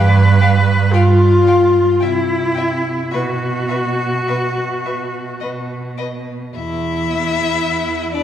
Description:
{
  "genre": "classical, slow romantic movement for string quartet",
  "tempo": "52-59 BPM",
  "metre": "3/4",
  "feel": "rubato",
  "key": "E minor",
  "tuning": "A4 = 441 Hz",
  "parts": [
    { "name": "clear viola", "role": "accompaniment", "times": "0.0-8.2 s", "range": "B3 to B4", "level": "-17 LUFS", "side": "left 2 dB", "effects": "none" },
    { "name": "warm cello", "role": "bass", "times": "0.0-8.2 s", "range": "E2 to C3", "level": "-17 LUFS", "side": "right 3 dB", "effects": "none" },
    { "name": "rich violin", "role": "melody", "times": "0.4-8.2 s", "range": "D5 to G5", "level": "-26 LUFS", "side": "left 8 dB", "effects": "none" },
    { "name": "warm violin", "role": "second line", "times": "0.4-8.2 s", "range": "D4 to F5", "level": "-25 LUFS", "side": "equal", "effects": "none" }
  ],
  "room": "wet concert hall reverb, RT60 2.3 s",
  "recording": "heard from further back in the room",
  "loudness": "-14 LUFS",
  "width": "side -10 dB against mid",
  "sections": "0.0-6.6 A section; 6.6-8.2 B section",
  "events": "none",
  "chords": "0.0 G7; 2.0 C; 3.1 B5; 6.6 E5",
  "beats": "0.95 2.02 | 3.14 4.29 5.43 | 6.56 7.62"
}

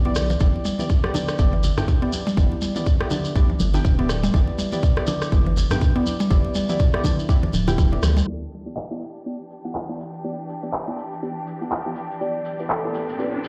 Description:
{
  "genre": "afro house",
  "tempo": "122 BPM",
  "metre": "4/4",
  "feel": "swing 57% on 16ths",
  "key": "E minor",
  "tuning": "A4 = 440 Hz",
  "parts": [
    { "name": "deep mellow chord stab", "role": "stabs", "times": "0.0-13.3 s", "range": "B3 to G5", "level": "-32 LUFS", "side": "equal", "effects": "chorus, sidechain pumping, delay" },
    { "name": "round analog bass", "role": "bass", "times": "0.0-8.2 s", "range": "D1 to G2", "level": "-25 LUFS", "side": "equal", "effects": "sidechain pumping" },
    { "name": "mallet-like synth pluck", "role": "arpeggios", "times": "0.1-8.2 s", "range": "B2 to E4", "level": "-29 LUFS", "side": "equal", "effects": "chorus, sidechain pumping, delay" },
    { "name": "congas", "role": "percussion", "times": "0.1-8.3 s", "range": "none", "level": "-30 LUFS", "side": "equal", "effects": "none" },
    { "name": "house drum kit", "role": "drums", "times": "0.2-13.5 s", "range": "crash cymbal, handclaps, hi-hat, rim click, toms", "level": "-32 LUFS", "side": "equal", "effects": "low-pass filter on snare, small room ambience, low-pass filter on toms, low-pass filter on cymbals, low-pass filter on hats" },
    { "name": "shekere", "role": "percussion", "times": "0.2-13.5 s", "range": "none", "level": "-37 LUFS", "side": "equal", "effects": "none" },
    { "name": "electronic kick drum", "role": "drums", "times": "0.4-7.9 s", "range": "none", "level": "-21 LUFS", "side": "equal", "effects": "small room ambience" },
    { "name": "clear studio string section", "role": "sustained chords", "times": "8.3-13.5 s", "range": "E3 to G4", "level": "-35 LUFS", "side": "equal", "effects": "sidechain pumping, low-pass filter" },
    { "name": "marimba with medium mallets", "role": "melody", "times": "12.2-13.5 s", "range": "A4 to D5", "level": "-30 LUFS", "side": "equal", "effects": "none" },
    { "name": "riser", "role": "sound effects", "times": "12.8-13.5 s", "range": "none", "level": "-34 LUFS", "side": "equal", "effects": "none" }
  ],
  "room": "light reverb, studio reverb",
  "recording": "played on a big sound system in a bare room, stone room reverb, low-pass filter",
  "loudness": "-22 LUFS",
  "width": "mono",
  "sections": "0.0-8.3 A section; 8.3-13.5 B section",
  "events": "band accent 8.0; filter sweep on synth stab 8.3-13.5; filter sweep on string section 8.3-13.5; filter sweep 8.3-13.5; riser 12.8-13.5",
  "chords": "0.4 G6; 8.3 Em7",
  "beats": "| 0.41 0.90 1.39 1.88 | 2.37 2.87 3.36 3.85 | 4.34 4.83 5.32 5.82 | 6.31 6.80 7.29 7.78 | 8.27 8.77 9.26 9.75 | 10.24 10.73 11.22 11.72 | 12.21 12.70 13.19"
}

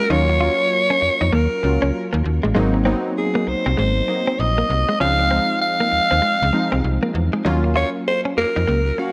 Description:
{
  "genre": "R&B",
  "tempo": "98 BPM",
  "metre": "4/4",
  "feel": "swing 62% on 16ths",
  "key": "unclear",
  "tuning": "A4 = 441 Hz",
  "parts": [
    { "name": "growling alto saxophone", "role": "melody", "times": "0.0-9.1 s", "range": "Gb4 to F5", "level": "-22 LUFS", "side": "equal", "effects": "none" },
    { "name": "warm analog keys", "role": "accompaniment", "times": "0.0-9.1 s", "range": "F3 to F5", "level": "-26 LUFS", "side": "equal", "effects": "chorus" },
    { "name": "direct-recorded clean electric guitar", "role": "riff", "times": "0.0-9.0 s", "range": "Ab3 to F4", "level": "-27 LUFS", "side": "equal", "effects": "analog chorus" },
    { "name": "slap-like FM bass", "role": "bass", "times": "0.1-8.9 s", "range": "Ab1 to F2", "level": "-23 LUFS", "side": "equal", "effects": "none" }
  ],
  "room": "light reverb",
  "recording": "none",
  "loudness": "-19 LUFS",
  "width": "mono",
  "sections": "0.0-9.1 A section",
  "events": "none",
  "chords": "0.0 Ebm9; 2.6 Ab7; 5.0 Dbmaj7; 7.5 Ebm9",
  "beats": "| 0.10 0.72 1.33 1.94 | 2.55 3.17 3.78 4.39 | 5.00 5.62 6.23 6.84 | 7.45 8.06 8.68"
}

